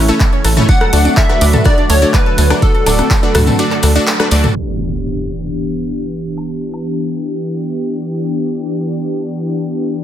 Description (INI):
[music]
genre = progressive house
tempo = 124 BPM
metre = 4/4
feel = straight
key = E dorian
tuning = A4 = 440 Hz
[part]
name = warm analog pad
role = sustained chords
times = 0.0-10.0 s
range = C#3 to G4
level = -19 LUFS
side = equal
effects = chorus, vintage 12-bit sampler grit, sidechain pumping
[part]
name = analog pluck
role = arpeggios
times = 0.0-4.5 s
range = C#4 to A5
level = -22 LUFS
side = right 3 dB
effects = chorus, sidechain pumping, digital delay
[part]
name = supersaw stab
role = stabs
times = 0.0-4.4 s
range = A3 to D5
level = -18 LUFS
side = left 2 dB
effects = sidechain pumping, digital delay
[part]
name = tight sequencer bass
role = bass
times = 0.0-4.5 s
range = D1 to D2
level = -12 LUFS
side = equal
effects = sidechain pumping
[part]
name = big-room dance drum kit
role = drums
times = 0.1-6.8 s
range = handclaps, hi-hat, ride cymbal, woodblock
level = -21 LUFS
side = equal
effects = sidechain pumping on hats, sidechain pumping on cymbals, sidechain pumping on perc
[part]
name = tambourine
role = percussion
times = 0.1-10.0 s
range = none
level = -26 LUFS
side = left 4 dB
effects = none
[part]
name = electronic kick drum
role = drums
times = 0.2-3.2 s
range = none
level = -12 LUFS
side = equal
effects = overdrive
[part]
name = punchy analog drum machine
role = percussion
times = 0.4-4.5 s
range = congas, rim click, toms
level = -18 LUFS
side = left 2 dB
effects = sidechain pumping on snare, sidechain pumping on toms, sidechain pumping on perc
[part]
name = plucky unison lead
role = melody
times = 0.7-4.1 s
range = A4 to F#5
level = -19 LUFS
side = equal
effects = sidechain pumping, digital delay
[part]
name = impact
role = sound effects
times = 4.6-6.5 s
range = none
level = -24 LUFS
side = equal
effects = none
[sound]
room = light reverb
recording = low-pass filter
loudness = -12 LUFS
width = side -10 dB against mid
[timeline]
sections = 0.0-4.6 A section; 4.6-10.0 B section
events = drop 0.0-4.6; kick drops out 3.6-4.6; band accent 4.1; impact 4.6-6.5; filter sweep 4.6-10.0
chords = 0.0 A; 0.7 D; 4.6 Em7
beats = 0.20 | 0.69 1.17 1.66 2.14 | 2.62 3.11 3.59 4.07 | 4.56 5.04 5.53 6.01 | 6.49 6.98 7.46 7.95 | 8.43 8.91 9.40 9.88